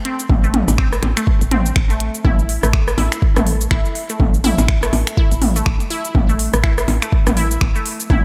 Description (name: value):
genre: minimal techno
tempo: 123 BPM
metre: 4/4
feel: swing 59% on 16ths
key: unclear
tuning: A4 = 440 Hz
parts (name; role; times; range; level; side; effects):
- resonant blip pluck; riff; 0.1-8.2 s; A3 to E4; -27 LUFS; equal; phaser, sidechain pumping, tape echo
- minimal click drum kit; drums; 0.1-8.1 s; cabasa, finger snaps, hi-hat; -27 LUFS; equal; none
- woody FM bass; bass; 0.3-8.2 s; A1; -22 LUFS; equal; sidechain pumping
- electronic kick drum; drums; 0.3-8.2 s; none; -19 LUFS; equal; none
- techno drum kit; percussion; 0.3-8.2 s; percussion blips, rim click, toms; -23 LUFS; equal; tape echo
room: light reverb, digital ambience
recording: none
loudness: -17 LUFS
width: mono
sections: 0.0-8.2 A section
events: none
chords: 0.0 A5